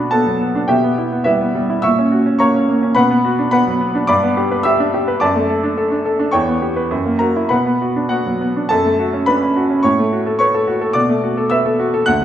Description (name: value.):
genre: classical, virtuoso piano study.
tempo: 106 BPM.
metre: 2/4.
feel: rubato.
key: B minor, F# minor from 8.7 s.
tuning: A4 = 440 Hz.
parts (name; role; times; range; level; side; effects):
bright baby grand piano; solo; 0.0-12.2 s; D2 to F#6; -14 LUFS; equal; none.
room: wet recital hall reverb, RT60 1.5 s.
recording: recorded in a church or concert hall, nothing above 10.6 kHz.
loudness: -14 LUFS.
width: side -10 dB against mid.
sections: 0.0-8.7 A section; 8.7-12.2 B section.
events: none.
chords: 0.0 Bm; 0.7 Em/B; 1.8 F#7/A#; 3.0 Bm; 4.1 G; 5.2 D/F#; 6.3 C#m7b5/E; 6.9 F#7; 7.5 Bm; 8.7 F#m; 9.8 F#m/A; 11.0 Bm7.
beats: 0.13 | 0.70 1.27 | 1.84 2.41 | 2.97 3.53 | 4.09 4.65 | 5.21 5.77 | 6.34 6.92 | 7.52 8.12 | 8.71 9.28 | 9.84 10.40 | 10.96 11.52 | 12.07.